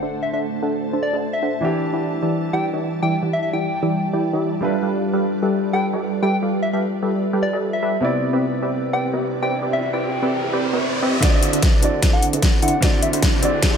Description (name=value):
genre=future bass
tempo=150 BPM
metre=4/4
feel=swing 54% on 16ths, half-time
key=unclear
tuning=A4 = 439 Hz
part: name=warm grand piano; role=accompaniment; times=0.0-13.8 s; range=C3 to D5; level=-26 LUFS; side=right 1 dB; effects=sidechain pumping, ping-pong delay
part: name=ethereal airy pad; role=sustained chords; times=0.0-13.8 s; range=G3 to A5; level=-28 LUFS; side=equal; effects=ensemble chorus, built-in reverb, tremolo, sidechain pumping
part: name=supersaw stab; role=riff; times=0.0-13.8 s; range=D3 to A5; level=-22 LUFS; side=right 1 dB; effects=sidechain pumping, low-pass filter
part: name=impact and riser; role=sound effects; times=0.0, 9.0-13.8 s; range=none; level=-27 LUFS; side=right 1 dB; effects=none
part: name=soft struck synth lead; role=melody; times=0.2-13.2 s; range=D5 to G5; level=-25 LUFS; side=left 2 dB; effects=chorus, tremolo, sidechain pumping, dub echo
part: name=warm 808-style bass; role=bass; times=11.2-13.8 s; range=none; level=barely audible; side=none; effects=none
part: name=dubstep drum kit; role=drums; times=11.2-13.7 s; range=hi-hat, snare drum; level=-22 LUFS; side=left 1 dB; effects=overdrive, high-pass filter on snare, high-pass filter on hats, high-pass filter on cymbals, high-pass filter on room
part: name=electronic kick drum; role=drums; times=11.2-13.7 s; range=none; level=-18 LUFS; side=equal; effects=overdrive
room=light reverb, digital ambience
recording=none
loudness=-18 LUFS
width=side -7 dB against mid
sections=0.0-11.2 A section; 11.2-13.8 B section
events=riser 9.0-11.2, 11.2-13.8; build-up 11.2-13.8; drum fill 11.2-13.8; filter sweep on supersaw synth 11.2-13.8; filter sweep on soft synth lead 11.2-13.8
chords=0.0 D7; 1.6 Em9; 4.6 G7; 8.0 Cmaj9; 11.2 D7